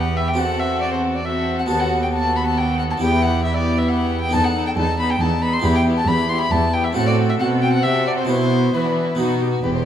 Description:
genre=classical, baroque-style concerto movement with solo episodes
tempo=136 BPM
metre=3/4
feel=straight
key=unclear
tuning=A4 = 440 Hz
part: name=rich chamber violin section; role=melody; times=0.0-9.9 s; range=D4 to B4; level=-31 LUFS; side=left 8 dB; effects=none
part: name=warm violin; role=melody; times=0.0-9.8 s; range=B4 to C6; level=-22 LUFS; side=left 2 dB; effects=none
part: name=rich chamber violin section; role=second line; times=0.0-9.9 s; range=D#4 to G4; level=-26 LUFS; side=left 1 dB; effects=none
part: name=harpsichord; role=accompaniment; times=0.0-9.9 s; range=D#2 to B4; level=-23 LUFS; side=left 1 dB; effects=none
part: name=warm chamber viola section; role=accompaniment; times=0.0-9.9 s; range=B3 to C4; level=-25 LUFS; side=right 1 dB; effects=none
part: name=warm chamber cello section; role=bass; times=0.0-9.9 s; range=D#2 to E3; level=-23 LUFS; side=right 3 dB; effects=none
part: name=dark studio double bass section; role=bass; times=9.6-9.9 s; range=E1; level=-32 LUFS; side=right 4 dB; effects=none
room=wet recital hall reverb, RT60 1.3 s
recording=none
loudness=-17 LUFS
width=side -10 dB against mid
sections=0.0-9.6 A section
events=none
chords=0.4 F#m7b5/E; 1.7 B7/D#; 3.0 Em; 4.3 B7/E; 5.6 Em; 7.0 F#dim/A; 8.3 Bsus4; 9.2 B

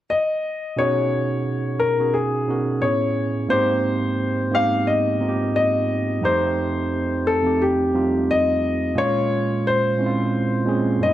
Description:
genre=R&B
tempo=88 BPM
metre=4/4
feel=swing 55% on 16ths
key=unclear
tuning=A4 = 440 Hz
part: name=warm grand piano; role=melody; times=0.1-11.1 s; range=G4 to F5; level=-22 LUFS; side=left 3 dB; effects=slapback echo
part: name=overdriven tine electric piano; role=accompaniment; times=0.8-11.1 s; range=F2 to Bb4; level=-21 LUFS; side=right 2 dB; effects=none
room=moderate echo chamber reverb, RT60 2.0 s, small room ambience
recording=none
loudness=-19 LUFS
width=side -13 dB against mid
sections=0.8-11.1 A section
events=none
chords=0.0 N.C.; 0.8 B69; 2.8 Amaj9; 3.5 Abmaj9; 6.2 F7; 9.0 Bbm9

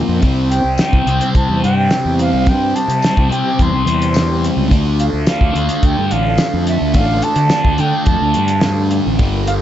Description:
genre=psychedelic rock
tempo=107 BPM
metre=4/4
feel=straight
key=unclear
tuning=A4 = 440 Hz
part: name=warm symphonic string section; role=sustained chords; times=0.0-9.6 s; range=F3 to C5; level=-28 LUFS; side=right 5 dB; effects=none
part: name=thick fuzz guitar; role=riff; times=0.0-9.6 s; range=G2 to D4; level=-18 LUFS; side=left 1 dB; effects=distortion, phaser
part: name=fuzz fingered electric bass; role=bass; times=0.1-9.6 s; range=G1 to D3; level=-18 LUFS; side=equal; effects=overdrive
part: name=cloth-damped thuddy drum kit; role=drums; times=0.2-9.6 s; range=hi-hat, kick drum, snare drum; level=-16 LUFS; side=equal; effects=none
part: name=mellow silver concert flute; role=melody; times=0.5-9.5 s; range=E5 to C6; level=-20 LUFS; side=right 1 dB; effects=tape echo
part: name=tambourine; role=percussion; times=0.8-8.8 s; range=none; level=-34 LUFS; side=left 7 dB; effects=none
room=small room ambience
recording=nothing above 7.9 kHz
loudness=-12 LUFS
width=side -11 dB against mid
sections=0.0-9.6 A section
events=none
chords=0.2 C; 4.7 Dm

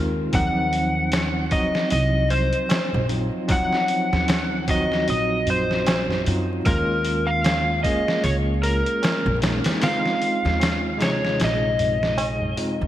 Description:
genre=trip hop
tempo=76 BPM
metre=4/4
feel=swing 57% on 16ths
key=Eb dorian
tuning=A4 = 440 Hz
part: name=bell-like tine electric piano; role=accompaniment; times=0.0-12.9 s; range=C3 to Ab4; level=-26 LUFS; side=right 1 dB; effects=tremolo, vintage 12-bit sampler grit
part: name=upright bass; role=bass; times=0.0-12.9 s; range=Bb1 to Gb2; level=-25 LUFS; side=equal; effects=none
part: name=overdriven slide guitar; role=melody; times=0.3-12.6 s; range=Bb4 to Gb5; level=-24 LUFS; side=left 1 dB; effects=tape echo
part: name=trip hop sampler-style drum kit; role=drums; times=0.3-12.8 s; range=hi-hat, kick drum, snare drum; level=-25 LUFS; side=equal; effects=gated reverb
part: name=tabla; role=percussion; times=1.1-12.5 s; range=none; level=-33 LUFS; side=right 2 dB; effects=none
room=moderate lush hall reverb, RT60 2.6 s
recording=bright 1980s-style digital production, vinyl crackle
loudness=-19 LUFS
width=side -12 dB against mid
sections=0.0-12.9 A section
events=kick drops out 11.4-12.9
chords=0.3 Ebm69; 6.7 Bbm7/Eb; 9.8 Fm7/Eb

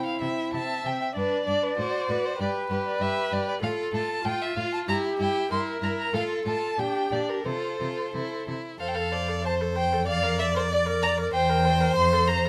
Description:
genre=quick classical-period movement for string quartet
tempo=95 BPM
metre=2/4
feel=rubato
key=F major from 3.6 s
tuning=A4 = 440 Hz
part: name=rich violin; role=melody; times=0.0-12.5 s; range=Bb4 to C6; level=-31 LUFS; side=equal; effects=none
part: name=rich violin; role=second line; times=0.0-12.5 s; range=C4 to D5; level=-34 LUFS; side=equal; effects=none
part: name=rich viola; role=accompaniment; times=0.0-12.5 s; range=E4 to E5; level=-32 LUFS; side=equal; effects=none
part: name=rich cello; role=bass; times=0.2-12.5 s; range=E2 to C3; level=-33 LUFS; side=equal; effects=none
room=light reverb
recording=close, detailed microphones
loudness=-27 LUFS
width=mono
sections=0.0-8.8 A section; 8.8-12.5 B section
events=none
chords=0.0 C; 1.2 G; 1.8 F#dim; 2.4 G; 3.6 F/A; 4.9 Edim/G; 6.1 F/A; 6.8 Gm/Bb; 7.5 F/C; 8.8 F; 10.1 Bb/F; 11.3 C7/E; 12.0 F

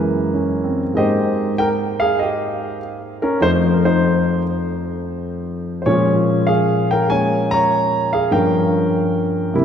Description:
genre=solo jazz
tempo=98 BPM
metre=4/4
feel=swing 69% on 8ths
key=F minor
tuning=A4 = 440 Hz
part: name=warm concert grand piano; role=solo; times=0.0-9.6 s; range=F2 to Bb5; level=-16 LUFS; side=equal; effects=none
room=wet church reverb, RT60 3.4 s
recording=recorded in a church or concert hall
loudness=-16 LUFS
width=side -8 dB against mid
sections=0.0-9.6 A section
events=none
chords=0.0 Gb9; 0.9 Abmaj9; 3.4 F7; 5.9 Bbm7; 8.3 Gm7b5

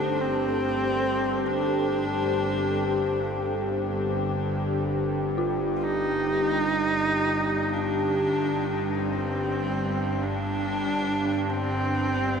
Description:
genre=dark ambient drone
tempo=free time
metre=none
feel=none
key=unclear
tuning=A4 = 440 Hz
part: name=bright horsehead fiddle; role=melody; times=0.0-12.4 s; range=C4 to F4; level=-28 LUFS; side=right 1 dB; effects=ping-pong delay
part: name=deep dark ambient pad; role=sustained chords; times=0.0-12.4 s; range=G4 to D5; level=-28 LUFS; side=left 1 dB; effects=chorus, built-in reverb
part: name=dark detuned synth bell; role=arpeggios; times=0.0-12.4 s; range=A3 to F4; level=-38 LUFS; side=left 1 dB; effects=none
part: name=bowed-like drone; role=drone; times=0.0-12.4 s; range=G1 to G2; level=-29 LUFS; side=equal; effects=built-in reverb
part: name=flickering grainy texture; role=texture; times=3.4-12.4 s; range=G5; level=-45 LUFS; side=right 1 dB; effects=none
room=wet cathedral reverb, RT60 4.9 s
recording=none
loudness=-24 LUFS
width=side -6 dB against mid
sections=0.0-12.4 A section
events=none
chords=0.0 Gsus2

